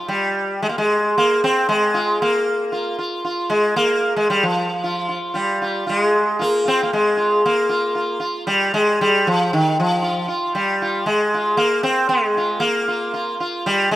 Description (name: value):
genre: indian classical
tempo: 115 BPM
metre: 5/4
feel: straight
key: F raga bhimpalasi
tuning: A4 = 440 Hz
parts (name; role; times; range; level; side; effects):
- sitar; solo; 0.0-14.0 s; Eb3 to F4; -17 LUFS; equal; tape echo
room: light reverb, studio reverb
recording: rough home demo mix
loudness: -17 LUFS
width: side -15 dB against mid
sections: 0.0-7.4 A section; 7.4-14.0 B section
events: none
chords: none